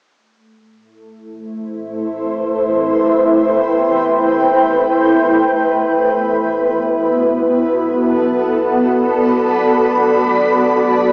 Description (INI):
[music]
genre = ambient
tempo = free time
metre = none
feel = none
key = A dorian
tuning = A4 = 440 Hz
[part]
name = granular cloud pad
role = sustained chords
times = 1.5-11.1 s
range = A3 to B5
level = -15 LUFS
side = equal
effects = built-in reverb
[sound]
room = moderate small room reverb, RT60 0.5 s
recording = home recording on cassette, small speaker sound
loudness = -15 LUFS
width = mono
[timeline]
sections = 0.1-11.1 A section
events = none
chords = 0.1 Am7; 5.8 Bm7